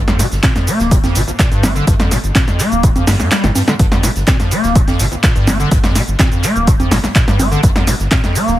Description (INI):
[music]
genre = acid house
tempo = 125 BPM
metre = 4/4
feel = straight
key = G minor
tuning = A4 = 441 Hz
[part]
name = liquid acid bass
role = riff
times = 0.0-8.6 s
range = G1 to Bb3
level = -16 LUFS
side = equal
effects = overdrive, lush chorus, digital delay
[part]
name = round analog bass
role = bass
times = 0.0-8.6 s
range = D1 to G2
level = -19 LUFS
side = equal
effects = sidechain pumping
[part]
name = punchy analog drum machine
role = drums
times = 0.1-8.6 s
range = congas, handclaps, hi-hat, shaker, snare drum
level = -17 LUFS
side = equal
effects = none
[part]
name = unplugged drum kit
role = drums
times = 0.1-8.6 s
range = hi-hat, snare drum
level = -32 LUFS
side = right 3 dB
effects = none
[part]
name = electronic kick drum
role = drums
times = 0.4-8.2 s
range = none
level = -13 LUFS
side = equal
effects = none
[sound]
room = light reverb, small room ambience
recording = heavily compressed radio sound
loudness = -11 LUFS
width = side -14 dB against mid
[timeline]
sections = 0.0-8.6 A section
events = kick drops out 3.3-3.8; drum fill 3.3-3.8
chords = 0.0 Gm7